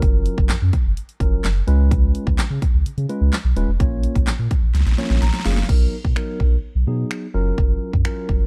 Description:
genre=dance-pop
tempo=127 BPM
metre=4/4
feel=straight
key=F# major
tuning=A4 = 438 Hz
part: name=mellow tine electric piano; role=accompaniment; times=0.0-8.4 s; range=F#3 to A#5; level=-29 LUFS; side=equal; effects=sidechain pumping
part: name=warm sub bass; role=bass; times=0.0-8.5 s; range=D#1 to C#3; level=-21 LUFS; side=equal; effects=sidechain pumping
part: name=pop drum kit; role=drums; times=0.0-8.4 s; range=crash cymbal, finger snaps, handclaps, hi-hat, kick drum, snare drum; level=-22 LUFS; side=equal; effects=none
room=little or no reverb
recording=dark, warm production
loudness=-19 LUFS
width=mono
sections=0.0-5.7 A section; 5.7-8.5 B section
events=drum fill 4.7-5.7; tine electric piano fill 5.0-5.7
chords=0.0 F#maj7; 1.7 C#7; 3.8 A#m; 5.7 Bmaj7; 7.3 F#maj7

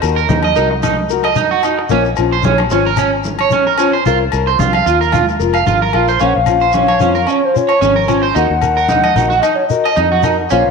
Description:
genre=highlife guitar band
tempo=112 BPM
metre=4/4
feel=swing 55% on 16ths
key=Bb minor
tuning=A4 = 440 Hz
part: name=fingerpicked old ladder-braced acoustic guitar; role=accompaniment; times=0.0-10.7 s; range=Bb3 to C5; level=-20 LUFS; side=left 10 dB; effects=none
part: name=fingered electric bass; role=bass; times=0.0-10.7 s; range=F1 to F2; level=-20 LUFS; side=equal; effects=none
part: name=agogo bells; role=percussion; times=0.0-10.4 s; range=none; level=-24 LUFS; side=left 14 dB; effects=none
part: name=congas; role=percussion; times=0.0-10.6 s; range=none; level=-24 LUFS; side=left 2 dB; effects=none
part: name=shekere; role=percussion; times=0.0-10.6 s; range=none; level=-23 LUFS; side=left 7 dB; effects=none
part: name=electric guitar at the edge of break-up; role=arpeggios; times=0.2-10.6 s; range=Db4 to F5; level=-15 LUFS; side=right 7 dB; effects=lush chorus, slapback echo
part: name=mellow hollow wooden flute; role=melody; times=6.2-10.7 s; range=C5 to Gb5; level=-15 LUFS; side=left 3 dB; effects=none
room=wet echo chamber reverb, RT60 2.4 s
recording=1960s-style stereo with parts hard left and right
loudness=-11 LUFS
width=side -4 dB against mid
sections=0.0-6.2 A section; 6.2-10.7 B section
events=none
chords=0.0 Ebm; 1.9 Bbmadd9; 4.0 Fsus4/C; 6.2 Bbmadd9; 8.4 Ebm

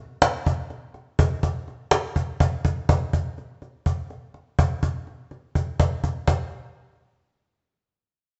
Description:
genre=progressive instrumental, progressive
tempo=248 BPM (eighths)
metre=7/8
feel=straight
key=none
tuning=none
part: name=cajon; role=drums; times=0.2-6.4 s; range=none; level=-23 LUFS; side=equal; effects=none
room=wet stone room reverb, RT60 1.4 s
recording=band playing live in one room, nothing above 8.0 kHz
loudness=-25 LUFS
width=mono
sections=0.0-6.3 A section; 6.3-8.4 B section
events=none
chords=none

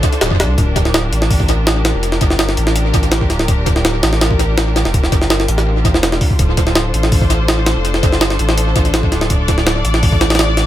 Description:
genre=drum and bass, jungle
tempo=165 BPM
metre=4/4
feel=straight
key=unclear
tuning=A4 = 436 Hz
part: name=rich studio string section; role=sustained chords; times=0.0-10.7 s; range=D4 to D5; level=-21 LUFS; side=left 2 dB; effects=none
part: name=jungle sampler-style drum kit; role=drums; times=0.0-10.7 s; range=hi-hat, kick drum, snare drum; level=-14 LUFS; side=equal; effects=tape echo
part: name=saturated sub bass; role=bass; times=0.2-10.7 s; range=D1 to C2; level=-17 LUFS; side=equal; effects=none
room=light reverb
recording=echo-heavy mix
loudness=-12 LUFS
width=side -13 dB against mid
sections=0.0-10.7 A section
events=none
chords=0.0 Dm7; 0.6 Gm7/D; 6.4 Dm7

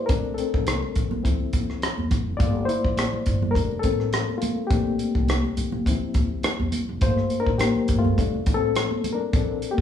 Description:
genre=lush 1970s-style soul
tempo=104 BPM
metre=4/4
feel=swing 54% on 16ths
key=G dorian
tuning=A4 = 440 Hz
part: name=barky reed electric piano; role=accompaniment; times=0.0-9.8 s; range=F3 to E5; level=-25 LUFS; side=left 4 dB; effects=overdrive, fast tremolo
part: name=upright bass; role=bass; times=0.1-9.8 s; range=F1 to Bb2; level=-28 LUFS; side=equal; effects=none
part: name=warm soul drum kit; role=drums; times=0.1-9.8 s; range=hi-hat, kick drum, rim click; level=-25 LUFS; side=equal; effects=none
part: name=congas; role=percussion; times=0.2-9.5 s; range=none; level=-32 LUFS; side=right 3 dB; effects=none
room=moderate large studio reverb, RT60 0.9 s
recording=band playing live in one room, small room ambience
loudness=-21 LUFS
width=side -9 dB against mid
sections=0.0-9.8 A section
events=reed electric piano solo 0.0-9.8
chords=0.1 Bbmaj9; 1.2 Dm9; 2.4 Gm9; 3.6 F69; 4.7 Bbmaj9; 5.9 Dm9; 7.0 Gm9; 8.2 F69

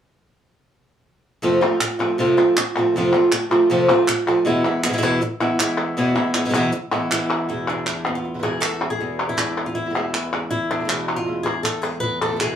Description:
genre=flamenco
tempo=159 BPM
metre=4/4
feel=straight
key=E phrygian dominant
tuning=A4 = 441 Hz
part: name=flamenco guitar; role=melody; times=1.4-12.6 s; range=E2 to B4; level=-20 LUFS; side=equal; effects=none
part: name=flamenco guitar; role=stabs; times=1.4-12.6 s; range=E2 to F4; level=-26 LUFS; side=right 3 dB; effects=none
part: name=palmas hand claps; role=percussion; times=1.6-12.6 s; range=none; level=-23 LUFS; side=equal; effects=none
room=wet studio ambience, RT60 0.5 s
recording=band playing live in one room, small room ambience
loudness=-18 LUFS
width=side -9 dB against mid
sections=1.4-7.5 A section; 7.5-12.6 B section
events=none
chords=1.4 F; 4.5 E

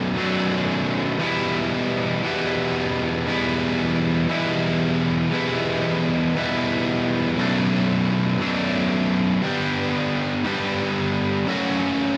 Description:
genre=rock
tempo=117 BPM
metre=4/4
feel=straight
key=unclear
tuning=A4 = 441 Hz
part: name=cranked stack guitar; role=solo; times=0.0-12.2 s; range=B1 to G4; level=-22 LUFS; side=equal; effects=overdrive
room=moderate large studio reverb, RT60 1.2 s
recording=none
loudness=-22 LUFS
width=mono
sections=0.0-12.2 A section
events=none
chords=0.0 Bm7; 1.2 Em; 7.4 Bm7; 9.4 G; 11.5 F#m

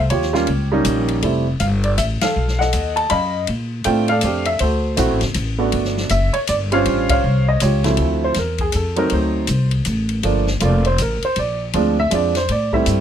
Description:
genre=jazz piano trio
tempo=160 BPM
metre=3/4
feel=swing 64% on 8ths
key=D minor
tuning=A4 = 440 Hz
part: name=warm upright piano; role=melody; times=0.0-13.0 s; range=D2 to B5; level=-19 LUFS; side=right 2 dB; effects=none
part: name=upright bass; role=bass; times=0.0-13.0 s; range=F1 to Bb2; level=-20 LUFS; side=left 1 dB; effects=none
part: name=open jazz drum kit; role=drums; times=0.1-13.0 s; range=hi-hat, kick drum, ride cymbal, snare drum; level=-26 LUFS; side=left 4 dB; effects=none
room=little or no reverb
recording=close, detailed microphones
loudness=-16 LUFS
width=side -9 dB against mid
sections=0.0-8.0 A section; 8.0-13.0 B section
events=band accent 2.2, 7.0; upright piano solo 8.0-13.0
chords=0.1 Eb9; 1.2 Fmaj7; 2.4 B7#11; 3.5 Bbmaj7; 4.6 D7; 5.7 Gmaj7; 6.9 A7alt; 8.0 Dm9; 9.1 D7b9; 10.2 Gm9; 11.4 Bb9; 12.5 Am7

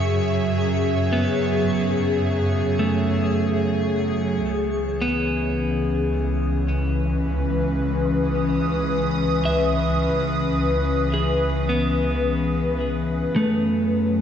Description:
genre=ambient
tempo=54 BPM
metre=4/4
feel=straight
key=C# minor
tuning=A4 = 438 Hz
part: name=airy breathy pad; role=sustained chords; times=0.0-14.2 s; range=E3 to D#6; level=-22 LUFS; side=left 1 dB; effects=chorus
part: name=clean electric guitar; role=arpeggios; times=0.0-14.2 s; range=A3 to E5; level=-26 LUFS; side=equal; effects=tape echo
part: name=dark symphonic double bass section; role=bass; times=0.0-14.2 s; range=C#2 to F#2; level=-25 LUFS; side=equal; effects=none
part: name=pedal harmonium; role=drone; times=0.0-14.2 s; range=C#3 to G#4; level=-34 LUFS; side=left 1 dB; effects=stereo widening
part: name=twinkling granular texture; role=texture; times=0.0-4.5 s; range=C#5 to C#6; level=-36 LUFS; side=right 3 dB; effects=built-in reverb
room=wet concert hall reverb, RT60 2.0 s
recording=nothing above 7.8 kHz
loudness=-20 LUFS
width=side -8 dB against mid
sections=0.0-4.5 A section; 4.5-14.2 A section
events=none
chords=0.0 F#m9; 4.5 C#m9; 13.4 F#madd9

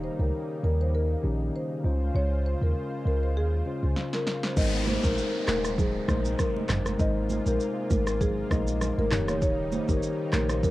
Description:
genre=afrobeats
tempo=99 BPM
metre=4/4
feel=swing 55% on 16ths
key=Ab major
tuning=A4 = 440 Hz
part: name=marimba with medium mallets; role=melody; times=0.0-10.7 s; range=Ab4 to Eb5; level=-33 LUFS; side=left 1 dB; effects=cassette tape
part: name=mellow tine electric piano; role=accompaniment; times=0.0-10.7 s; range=Db3 to Eb5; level=-31 LUFS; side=left 2 dB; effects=cassette tape
part: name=lush unison pad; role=sustained chords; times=0.0-10.7 s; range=C3 to C5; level=-38 LUFS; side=equal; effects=chorus, cassette tape
part: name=warm 808-style bass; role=bass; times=0.0-10.7 s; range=Eb1 to Eb2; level=-28 LUFS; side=equal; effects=none
part: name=deep house drum kit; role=drums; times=4.0-10.7 s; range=crash cymbal, handclaps, kick drum, rim click, shaker, snare drum, toms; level=-29 LUFS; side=equal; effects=cassette tape
part: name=downlifter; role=sound effects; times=4.6-9.4 s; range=none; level=-36 LUFS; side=equal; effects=none
part: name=congas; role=percussion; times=4.9-10.7 s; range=none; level=-35 LUFS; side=right 5 dB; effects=none
room=digital ambience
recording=home recording on cassette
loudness=-24 LUFS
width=side -17 dB against mid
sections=0.0-4.6 A section; 4.6-10.7 B section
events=drum fill 4.0-4.6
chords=0.0 Eb7; 1.8 Dbmaj7; 4.6 Abadd9; 9.1 Eb7

